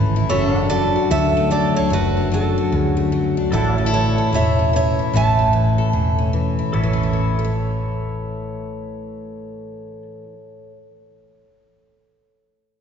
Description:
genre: honky-tonk and classic country.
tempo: 149 BPM.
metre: 4/4.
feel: swing 63% on 8ths.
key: A major.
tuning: A4 = 440 Hz.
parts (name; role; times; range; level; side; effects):
picked steel-string acoustic guitar; accompaniment; 0.0-10.8 s; F#2 to C#5; -22 LUFS; left 3 dB; none.
pedal steel guitar; sustained chords; 0.0-10.0 s; D4 to F#5; -29 LUFS; right 1 dB; none.
vintage muted fingered electric bass; bass; 0.0-10.0 s; E1 to D2; -20 LUFS; equal; none.
picked steel-string acoustic guitar; melody; 0.3-6.3 s; E4 to A5; -21 LUFS; right 3 dB; none.
room: wet church reverb, RT60 3.4 s.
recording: recorded in a church or concert hall, nothing above 7.7 kHz.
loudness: -16 LUFS.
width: side -7 dB against mid.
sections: 0.3-6.7 A section; 6.7-10.0 B section.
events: none.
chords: 0.3 D/F#; 3.5 A.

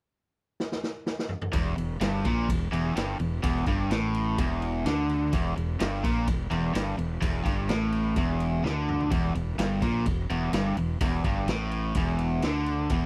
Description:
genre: blues rock power trio and southern rock.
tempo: 127 BPM.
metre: 4/4.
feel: straight.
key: unclear.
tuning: A4 = 440 Hz.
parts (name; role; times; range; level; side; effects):
raw garage drum kit; drums; 0.6-13.0 s; kick drum, ride cymbal, snare drum, toms; -34 LUFS; equal; none.
overdriven electric guitar; riff; 1.5-13.1 s; E2 to D3; -30 LUFS; equal; none.
fuzz fingered electric bass; bass; 1.5-13.1 s; E1 to D2; -33 LUFS; equal; overdrive.
room: little or no reverb.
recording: dry, close 1970s-style studio recording.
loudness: -28 LUFS.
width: mono.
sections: 0.0-1.5 A section; 1.5-13.1 B section.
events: drum fill 0.6-1.5, 8.6-9.1.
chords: 0.0 N.C.; 1.5 Em7.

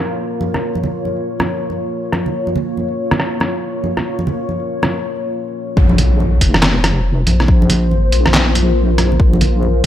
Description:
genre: deep dubstep.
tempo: 140 BPM.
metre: 4/4.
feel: swing 62% on 16ths, half-time.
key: Bb minor.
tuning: A4 = 441 Hz.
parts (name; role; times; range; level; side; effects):
deep dark ambient pad; sustained chords; 0.0-9.9 s; Bb3 to Db5; -21 LUFS; left 2 dB; chorus, built-in reverb.
congas; percussion; 0.4-9.7 s; none; -22 LUFS; right 2 dB; none.
trip hop sampler-style drum kit; drums; 0.5-9.9 s; handclaps, hi-hat, rim click, snare drum; -18 LUFS; equal; overdrive, low-pass filter on snare, low-pass filter on hats.
deep soft wobble bass; bass; 5.8-9.9 s; F1 to Bb1; -15 LUFS; equal; chorus.
electronic kick drum; drums; 5.8-9.9 s; none; -13 LUFS; equal; overdrive.
impact; sound effects; 5.8-7.5 s; none; -22 LUFS; equal; none.
room: light reverb, digital ambience.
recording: none.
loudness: -14 LUFS.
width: side -11 dB against mid.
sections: 0.0-5.8 A section; 5.8-9.9 B section.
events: break 4.9-5.8; drop 5.8-9.9; impact 5.8-7.5.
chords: 0.0 Bb5.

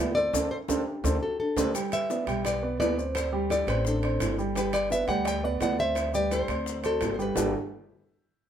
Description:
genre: latin, Cuban son and guajira.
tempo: 171 BPM.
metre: 4/4.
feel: straight.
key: G major.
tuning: A4 = 444 Hz.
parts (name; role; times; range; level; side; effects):
nylon-string guitar; melody; 0.0-7.5 s; G4 to G5; -30 LUFS; left 1 dB; none.
felt-muted upright piano; second line; 0.0-7.5 s; D4 to D5; -36 LUFS; left 1 dB; none.
dark baby grand piano; arpeggios; 0.0-7.5 s; G3 to G5; -31 LUFS; right 3 dB; none.
upright bass; bass; 0.0-7.5 s; G1 to D2; -32 LUFS; left 1 dB; none.
maracas; percussion; 0.2-7.4 s; none; -39 LUFS; left 7 dB; none.
bongos; percussion; 0.3-7.4 s; none; -39 LUFS; left 7 dB; none.
timbales; percussion; 0.3-7.4 s; none; -34 LUFS; right 5 dB; none.
room: moderate large studio reverb, RT60 0.8 s.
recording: band playing live in one room.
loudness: -25 LUFS.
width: side -9 dB against mid.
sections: 0.0-1.7 A section; 1.7-7.4 B section; 7.4-8.5 C section.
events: band accent 0.3-1.7; drum fill 0.9-1.7.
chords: 0.3 D7sus4; 1.7 G; 3.1 D7sus4; 4.6 G; 6.0 D7sus4; 7.4 Gmaj9.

